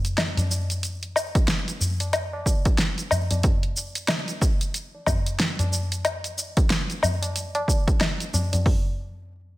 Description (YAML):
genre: downtempo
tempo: 92 BPM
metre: 4/4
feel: swing 60% on 16ths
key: none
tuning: none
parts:
  - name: deep house drum kit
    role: drums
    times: 0.0-8.6 s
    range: hi-hat, shaker, snare drum, woodblock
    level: -26 LUFS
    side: left 1 dB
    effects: overdrive, studio reverb
  - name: tabla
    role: percussion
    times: 0.4-8.6 s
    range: none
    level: -27 LUFS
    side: equal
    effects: none
  - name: deep house drum kit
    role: drums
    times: 1.4-8.8 s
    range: hi-hat, kick drum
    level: -22 LUFS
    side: equal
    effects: overdrive, studio reverb
room: light reverb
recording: none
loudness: -22 LUFS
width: side -18 dB against mid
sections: 0.0-8.7 A section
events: none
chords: none